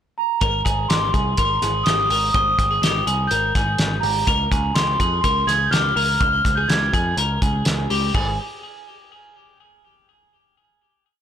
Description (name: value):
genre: jangly indie pop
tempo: 124 BPM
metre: 4/4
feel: straight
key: Ab major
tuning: A4 = 441 Hz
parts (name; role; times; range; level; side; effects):
- large celesta; melody; 0.2-7.1 s; Bb5 to Ab6; -21 LUFS; right 1 dB; digital delay
- twelve-string electric guitar; arpeggios; 0.4-8.4 s; G4 to C5; -25 LUFS; left 3 dB; digital delay
- picked electric bass; bass; 0.4-8.4 s; Ab1 to F2; -24 LUFS; equal; none
- cloth-damped thuddy drum kit; drums; 0.4-8.3 s; crash cymbal, hi-hat, kick drum, snare drum; -23 LUFS; equal; none
room: moderate spring reverb, RT60 2.0 s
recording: blown-out, overdriven recording, overdrive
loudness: -17 LUFS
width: side -9 dB against mid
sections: 0.0-0.4 pickup bar; 0.4-8.1 verse; 8.1-10.1 final note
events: none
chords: 0.4 Abmaj7; 4.3 Db; 8.1 N.C.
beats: | 0.42 0.90 1.38 1.86 | 2.34 2.83 3.31 3.79 | 4.27 4.76 5.24 5.72 | 6.21 6.69 7.18 7.66 | 8.15